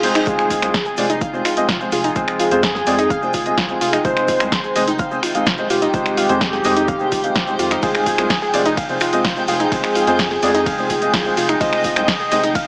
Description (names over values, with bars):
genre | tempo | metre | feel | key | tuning
progressive house | 127 BPM | 4/4 | straight | F minor | A4 = 439 Hz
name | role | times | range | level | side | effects
wide unison lead | melody | 0.0-12.5 s | G4 to Eb5 | -20 LUFS | equal | sidechain pumping, dub echo
evolving wavetable pad | sustained chords | 0.0-12.7 s | C3 to G5 | -29 LUFS | equal | none
dark baby grand piano | stabs | 0.0-12.4 s | Ab3 to F5 | -21 LUFS | equal | sidechain pumping, digital delay
deep house drum kit | drums | 0.0-12.6 s | finger snaps, hi-hat, ride cymbal, snare drum | -21 LUFS | equal | overdrive
soft round pluck | arpeggios | 0.2-12.6 s | Eb4 to F6 | -22 LUFS | equal | chorus, sidechain pumping, digital delay
round analog bass | bass | 0.3-12.6 s | F1 to F2 | -29 LUFS | equal | sidechain pumping
electronic kick drum | drums | 0.3-12.6 s | none | -26 LUFS | equal | overdrive
egg shaker | percussion | 0.3-12.6 s | none | -37 LUFS | equal | none
twinkling granular texture | texture | 1.0-12.7 s | G5 | -30 LUFS | equal | none
room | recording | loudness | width
moderate lush hall reverb, RT60 1.9 s | small speaker sound | -15 LUFS | side -38 dB against mid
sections
0.0-12.7 A section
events
break 0.0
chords
0.3 Fm; 4.0 Ab/F; 7.8 Fm; 11.6 Ab/F